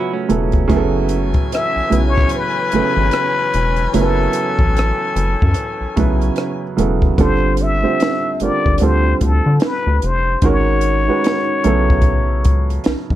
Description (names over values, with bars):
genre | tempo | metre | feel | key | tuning
R&B, neo-soul | 74 BPM | 4/4 | swing 59% on 16ths | unclear | A4 = 438 Hz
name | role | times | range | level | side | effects
clean electric guitar | second line | 0.0-1.3 s | A3 to E4 | -27 LUFS | right 7 dB | spring reverb, plate reverb
warm upright piano | accompaniment | 0.0-13.2 s | C#3 to C5 | -19 LUFS | right 4 dB | plate reverb
bright saxophone section | stabs | 0.0-6.7 s | C#3 to G#5 | -27 LUFS | left 4 dB | plate reverb
rubbery square bass | bass | 0.3-13.2 s | E1 to D3 | -18 LUFS | equal | none
compact cocktail drum kit | drums | 0.3-13.2 s | hi-hat, kick drum, rim click, snare drum | -18 LUFS | equal | none
trumpet with plunger mute | melody | 1.5-12.9 s | A4 to E5 | -19 LUFS | left 4 dB | plate reverb
room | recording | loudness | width
light reverb | none | -14 LUFS | side -13 dB against mid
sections
0.0-7.2 A section; 7.2-13.2 B section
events
none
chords
0.0 F#m11; 7.2 Gm11; 8.8 Dm7; 10.4 G#m11; 11.6 B9sus4